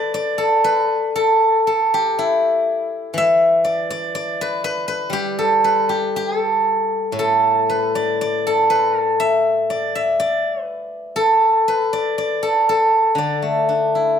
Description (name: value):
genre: chinese traditional, Chinese solo plucked strings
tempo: 60 BPM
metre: 2/4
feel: rubato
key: D zhi mode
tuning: A4 = 444 Hz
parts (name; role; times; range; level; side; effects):
- steel-string zither; solo; 0.0-14.2 s; A2 to E5; -16 LUFS; equal; none
room: moderate recital hall reverb, RT60 1.3 s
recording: none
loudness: -16 LUFS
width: side -8 dB against mid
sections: 0.0-14.2 A section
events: none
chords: none